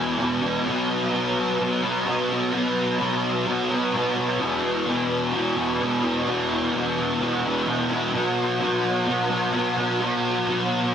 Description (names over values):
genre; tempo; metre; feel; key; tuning
rock; 128 BPM; 4/4; straight; unclear; A4 = 440 Hz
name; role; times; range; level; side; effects
fuzz guitar; solo; 0.0-10.9 s; E2 to B3; -21 LUFS; equal; distortion, ensemble chorus, analog delay
room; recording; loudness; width
light reverb, digital ambience; dense, heavily limited modern master; -21 LUFS; side -8 dB against mid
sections
0.7-10.9 A section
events
none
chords
0.0 E5; 0.7 B5; 4.4 E5; 8.1 B5